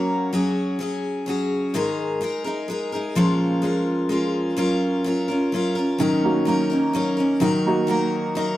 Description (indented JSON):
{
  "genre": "acoustic folk duo or small band",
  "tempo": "127 BPM",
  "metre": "3/4",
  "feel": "straight",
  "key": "unclear",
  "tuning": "A4 = 440 Hz",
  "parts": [
    { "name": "picked steel-string acoustic guitar", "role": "accompaniment", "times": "0.0-8.6 s", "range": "Ab2 to Bb4", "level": "-21 LUFS", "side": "equal", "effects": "none" },
    { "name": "warm upright piano", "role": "arpeggios", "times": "0.0-0.4, 6.0-8.6 s", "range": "Eb3 to Gb4", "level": "-22 LUFS", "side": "right 1 dB", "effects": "slapback echo" }
  ],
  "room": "moderate studio reverb, RT60 0.7 s",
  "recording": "none",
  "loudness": "-20 LUFS",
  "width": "side -15 dB against mid",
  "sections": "0.3-8.6 A section",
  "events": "none",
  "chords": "0.3 Gbsus2; 1.7 Absus2; 3.2 Bbm7; 4.6 Gbmaj7; 6.0 Gb6; 7.4 Ebm"
}